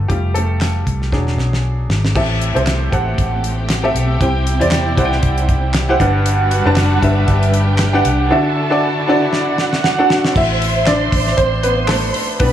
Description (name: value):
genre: piano-driven pop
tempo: 117 BPM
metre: 4/4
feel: swing 56% on 16ths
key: unclear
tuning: A4 = 442 Hz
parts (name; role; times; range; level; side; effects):
- clear upright piano; accompaniment; 0.0-12.5 s; G2 to A5; -17 LUFS; equal; none
- vintage muted fingered electric bass; bass; 0.0-12.5 s; E1 to E2; -17 LUFS; equal; none
- damped 70s drum kit; drums; 0.1-12.5 s; crash cymbal, handclaps, hi-hat, kick drum, snare drum; -20 LUFS; equal; none
- warm studio string section; sustained chords; 2.1-10.3 s; C3 to B4; -24 LUFS; right 2 dB; none
- dark studio violin section; second line; 6.3-12.5 s; F#4 to C6; -21 LUFS; right 7 dB; none
room: light reverb, studio ambience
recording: small room ambience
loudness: -13 LUFS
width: side -10 dB against mid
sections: 0.0-2.2 A section; 2.2-10.4 B section; 10.4-12.5 C section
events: upright piano solo 0.0-2.2, 10.4-12.5; drum fill 1.1-2.2, 9.3-10.4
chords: 0.1 Fadd9; 1.1 E7; 2.2 Am7; 4.2 C; 6.0 Gmaj7; 8.3 Dadd9; 10.4 Am